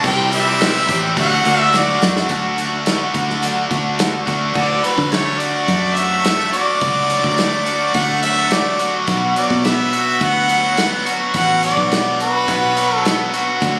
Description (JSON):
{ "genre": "folk rock and heartland rock", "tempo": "106 BPM", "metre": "4/4", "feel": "straight", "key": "D major", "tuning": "A4 = 439 Hz", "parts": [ { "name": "clear harmonica", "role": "melody", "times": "0.0-13.3 s", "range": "B4 to G5", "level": "-21 LUFS", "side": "equal", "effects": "plate reverb, tape echo" }, { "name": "picked twelve-string acoustic guitar", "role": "accompaniment", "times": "0.0-13.8 s", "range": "B2 to G4", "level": "-27 LUFS", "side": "equal", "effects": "none" }, { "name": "biting overdriven guitar", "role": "riff", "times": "0.0-13.8 s", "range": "B2 to G4", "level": "-22 LUFS", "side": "equal", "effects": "none" }, { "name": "fingered electric bass", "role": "bass", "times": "0.0-13.8 s", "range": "A1 to D3", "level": "-26 LUFS", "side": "equal", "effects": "none" }, { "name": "natural country drum kit", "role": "drums", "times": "0.0-13.8 s", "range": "crash cymbal, hi-hat, kick drum, snare drum", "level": "-24 LUFS", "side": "equal", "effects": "none" }, { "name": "egg shaker", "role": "percussion", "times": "0.0-2.2 s", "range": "none", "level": "-39 LUFS", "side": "equal", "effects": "none" } ], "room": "moderate studio ambience, RT60 0.5 s", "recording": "recorded on a phone in the room, studio reverb", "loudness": "-17 LUFS", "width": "mono", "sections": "0.0-2.3 A section; 2.3-4.6 B section; 4.6-13.8 C section", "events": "drum fill 1.7-2.3", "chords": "0.0 C; 1.2 D; 9.1 Bm", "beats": "| 0.04 0.60 1.17 1.73 | 2.29 2.86 3.42 3.99 | 4.55 5.12 5.69 6.25 | 6.82 7.39 7.95 8.52 | 9.09 9.65 10.22 10.78 | 11.35 11.92 12.48 13.05 | 13.62" }